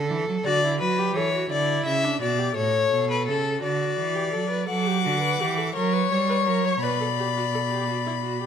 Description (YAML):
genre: classical, baroque-style fugue for string quartet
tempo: 57 BPM (dotted quarters)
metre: 6/8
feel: straight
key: D major, B minor from 4.7 s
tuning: A4 = 437 Hz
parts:
  - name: rich viola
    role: accompaniment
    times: 0.0-8.5 s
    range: D4 to C#5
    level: -29 LUFS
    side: right 1 dB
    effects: none
  - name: rich cello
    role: bass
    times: 0.0-8.5 s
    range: A2 to G3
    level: -27 LUFS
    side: right 6 dB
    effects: none
  - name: rich violin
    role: second line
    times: 0.5-8.5 s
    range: A4 to F#5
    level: -26 LUFS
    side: left 6 dB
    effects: none
  - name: rich violin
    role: melody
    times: 4.7-8.5 s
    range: B5 to D6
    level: -27 LUFS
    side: left 11 dB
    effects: none
room: moderate concert hall reverb, RT60 2.1 s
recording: close, detailed microphones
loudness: -22 LUFS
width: side -8 dB against mid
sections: 0.0-4.7 A section; 4.7-8.5 B section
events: none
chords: 0.5 D; 1.5 Em7; 2.6 A; 3.6 D; 5.8 F#; 6.8 Bm